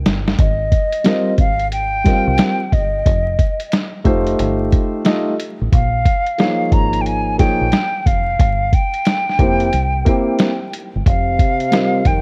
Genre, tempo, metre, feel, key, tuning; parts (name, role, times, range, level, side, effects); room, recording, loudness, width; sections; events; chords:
hip hop, jazz-hop; 90 BPM; 4/4; swing 66% on 16ths; Ab major; A4 = 440 Hz
deep dub fingered electric bass; bass; 0.0-12.2 s; F1 to C2; -23 LUFS; equal
lo-fi sampler-style drum kit; drums; 0.1-12.2 s; hi-hat, kick drum, snare drum; -19 LUFS; equal
mellow hollow silver concert flute; melody; 0.4-12.2 s; Eb5 to Bb5; -22 LUFS; equal
dark concert grand piano; accompaniment; 1.0-12.0 s; F3 to F5; -21 LUFS; equal
breathy trombone; second line; 11.1-12.2 s; C3 to Eb3; -26 LUFS; equal; analog delay
light reverb, studio ambience; worn, warbling old tape, cassette tape, vinyl crackle, warbly pitch drift; -16 LUFS; mono
0.4-12.2 A section
drum fill 0.0-0.4
0.4 Abmaj7; 3.1 F7; 5.7 Bbm7; 8.4 Fsus24; 9.7 C7; 11.1 F7(no3)